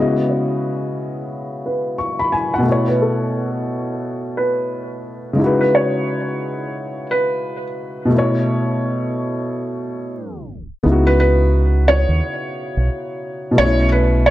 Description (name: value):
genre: lo-fi hip hop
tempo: 88 BPM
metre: 4/4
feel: swing 61% on 16ths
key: C# minor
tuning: A4 = 442 Hz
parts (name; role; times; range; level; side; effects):
- dark upright piano; accompaniment; 0.0-14.3 s; B2 to C#6; -19 LUFS; left 1 dB; none
- felt-muted upright piano; melody; 0.2-14.3 s; A4 to C#5; -20 LUFS; right 1 dB; low-pass filter, analog delay
- deep dub fingered electric bass; bass; 10.9-14.3 s; B1 to D#2; -15 LUFS; equal; none
room: moderate plate reverb, RT60 3.6 s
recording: dark, warm production, tape stop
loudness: -16 LUFS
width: side -15 dB against mid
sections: 0.0-10.8 A section; 10.8-14.3 B section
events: tape stop 10.2-10.8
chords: 0.0 C#m11; 2.7 B9sus4; 5.4 C#m11; 8.1 B9sus4; 10.8 C#m11; 13.6 B9sus4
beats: 0.62 1.30 1.98 | 2.66 3.34 4.03 4.71 | 5.39 6.07 6.75 7.43 | 8.12 8.80 9.48 10.16 | 10.84 11.53 12.21 12.89 | 13.57 14.25